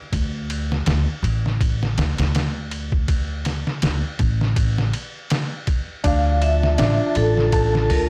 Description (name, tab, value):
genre	trip hop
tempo	81 BPM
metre	4/4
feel	swing 56% on 16ths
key	D minor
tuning	A4 = 440 Hz
part	upright bass	bass	0.1-8.1 s	A1 to D2	-24 LUFS	equal	none
part	trip hop sampler-style drum kit	drums	0.1-8.1 s	hi-hat, kick drum, ride cymbal, snare drum	-25 LUFS	equal	none
part	warbly tape-like pad	sustained chords	6.0-8.1 s	F3 to F4	-30 LUFS	equal	chorus, built-in reverb
part	felt-muted upright piano	arpeggios	6.0-8.1 s	D4 to A5	-28 LUFS	equal	vintage 12-bit sampler grit
part	wind-like tuned noise texture	texture	6.5-8.1 s	A5	-37 LUFS	equal	built-in reverb
part	vibraphone with medium mallets	melody	6.1-8.1 s	A4 to F5	-24 LUFS	equal	none
room	small room ambience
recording	dry, gritty hardware recording, vinyl crackle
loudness	-21 LUFS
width	mono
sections	0.0-8.1 A section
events	none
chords	0.0 D5; 6.0 Dmadd9